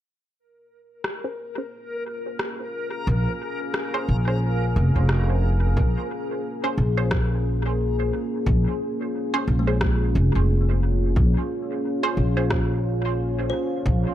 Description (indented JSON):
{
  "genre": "ambient dub",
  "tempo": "89 BPM",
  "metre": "4/4",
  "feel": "swing 58% on 16ths",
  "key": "Bb minor",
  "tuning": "A4 = 444 Hz",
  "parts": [
    { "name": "deep dark ambient pad", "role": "sustained chords", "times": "1.9-14.1 s", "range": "Bb3 to Ab4", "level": "-28 LUFS", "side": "left 1 dB", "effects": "chorus, built-in reverb" },
    { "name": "backwards swelling texture", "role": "texture", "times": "1.0-5.8 s", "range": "Bb4", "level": "-34 LUFS", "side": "left 1 dB", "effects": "built-in reverb" },
    { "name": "electronic rim click", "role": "drums", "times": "1.0-12.7 s", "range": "none", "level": "-31 LUFS", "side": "equal", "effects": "low-pass filter on snare, low-pass filter on room, dub echo" },
    { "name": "filtered dub chord stab", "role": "stabs", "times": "1.2-12.6 s", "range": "Db4 to C5", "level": "-30 LUFS", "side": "right 2 dB", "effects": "phaser, dub echo" },
    { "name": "upright bass", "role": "bass", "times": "3.1-14.0 s", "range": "F1 to Bb1", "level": "-21 LUFS", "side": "equal", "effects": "none" },
    { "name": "electronic kick drum", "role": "drums", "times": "5.8-14.0 s", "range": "none", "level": "-25 LUFS", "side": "equal", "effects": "none" },
    { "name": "kalimba", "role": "arpeggios", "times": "9.6-14.1 s", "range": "Ab3 to C5", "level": "-34 LUFS", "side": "left 1 dB", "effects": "low-pass filter, dub echo" }
  ],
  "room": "little or no reverb",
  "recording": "echo-heavy mix",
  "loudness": "-21 LUFS",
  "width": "side -12 dB against mid",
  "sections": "0.4-5.8 A section; 5.8-14.1 B section",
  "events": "fade-in on ambient pad 0.4-5.8; filter sweep on synth stab 0.4-5.8",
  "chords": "0.4 Bbm7"
}